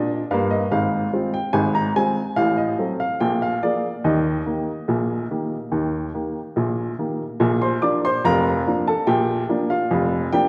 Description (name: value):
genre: ragtime piano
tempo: 72 BPM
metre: 2/4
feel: straight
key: Eb major, Bb major from 7.4 s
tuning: A4 = 442 Hz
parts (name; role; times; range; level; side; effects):
- warm upright piano; solo; 0.0-10.5 s; F1 to D6; -22 LUFS; equal; none
room: wet concert hall reverb, RT60 1.9 s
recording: recorded in a church or concert hall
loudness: -22 LUFS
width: mono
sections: 0.0-7.4 A section; 7.4-10.5 B section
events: none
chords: 0.0 Eb; 0.7 Fm/Ab; 2.4 Adim7; 3.2 Bb7; 4.0 Eb; 7.4 Bb